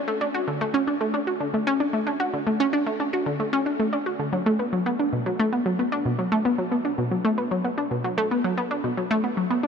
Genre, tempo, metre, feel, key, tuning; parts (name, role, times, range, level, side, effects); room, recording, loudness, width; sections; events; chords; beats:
ambient; 113 BPM; 4/4; straight; B minor; A4 = 438 Hz
analog pluck; solo; 0.1-9.7 s; B2 to F#4; -22 LUFS; equal; chorus, cassette tape, tape echo
moderate huge ambient reverb, RT60 8.8 s; -22 LUFS; side -6 dB against mid
0.0-9.7 A section
| 0.08 0.61 1.14 1.67 | 2.20 2.73 3.26 3.79 | 4.33 4.86 5.39 5.92 | 6.45 6.98 7.51 8.04 | 8.57 9.11 9.64